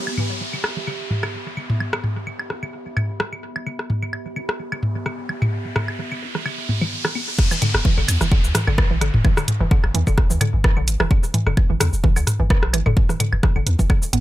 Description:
minimal techno; 129 BPM; 4/4; swing 54% on 16ths; E minor; A4 = 438 Hz
downlifter and riser; sound effects; 0.0-11.1 s; -30 LUFS; right 1 dB
warbly tape-like pad; texture; 0.0-7.4 s; B3 to B5; -34 LUFS; right 1 dB; chorus, built-in reverb, sidechain pumping
hollow square pluck; riff; 0.1-14.2 s; D3 to B3; -27 LUFS; equal; chorus, sidechain pumping, ping-pong delay
booming analog drum machine; percussion; 0.1-14.2 s; claves, rim click, toms, woodblock; -23 LUFS; equal; tape echo
punchy sub bass; bass; 0.3-14.2 s; E1 to E2; -21 LUFS; equal; sidechain pumping, high-pass filter
electronic kick drum; drums; 7.4-14.0 s; -17 LUFS; equal
house drum kit; drums; 7.4-14.2 s; cabasa, crash cymbal, hi-hat, rim click; -25 LUFS; right 1 dB; low-pass filter on hats, low-pass filter on cymbals, low-pass filter on perc, low-pass filter on snare, low-pass filter on room
light reverb; -18 LUFS; side -15 dB against mid
0.0-7.4 A section; 7.4-14.2 B section
filter sweep on drum 0.0-7.4; riser 4.9-7.4; drop 7.4-14.2
0.0 Em

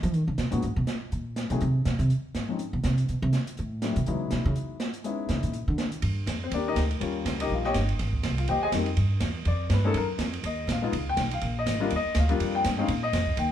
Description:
jazz, small-group swing and bop; 245 BPM; 4/4; swing 57% on 8ths; Eb major from 6.0 s; A4 = 440 Hz
upright bass; bass; 0.0-13.5 s; G1 to F3; -27 LUFS; right 1 dB
open jazz drum kit; drums; 0.0-13.4 s; hi-hat, kick drum, ride cymbal, snare drum; -33 LUFS; right 2 dB
dark baby grand piano; accompaniment; 0.5-13.5 s; F3 to Ab5; -29 LUFS; left 4 dB
moderate large studio reverb, RT60 0.9 s; band playing live in one room; -25 LUFS; side -10 dB against mid
0.0-6.0 A section; 6.0-13.5 A section
upright bass solo 0.0-6.0
0.1 B69; 1.1 Ebm; 1.6 N.C.; 2.1 Dbmaj7(no3) (rootless); 3.1 N.C.; 3.6 D9; 4.1 Emaj9; 5.0 Dbm7; 5.5 Bb; 6.0 Ebmaj7; 7.0 Eb7; 8.0 Abmaj7; 9.0 G5; 10.0 Gb6; 10.9 Db9; 11.9 Ebmaj7; 12.9 Bb5

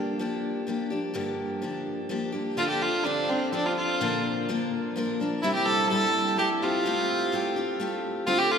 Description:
country; 126 BPM; 3/4; straight; D minor; A4 = 441 Hz
picked steel-string acoustic guitar; accompaniment; 0.0-8.6 s; G2 to Bb4; -28 LUFS; left 2 dB
warm fiddle; melody; 2.6-8.6 s; C4 to A4; -26 LUFS; right 2 dB
wet cathedral reverb, RT60 5.5 s; recorded in a church or concert hall; -24 LUFS; side -7 dB against mid
0.0-2.6 A section; 2.6-8.6 B section
0.0 Gm7; 2.6 Dm7; 4.0 Bb; 5.4 C; 6.8 Fadd9/C

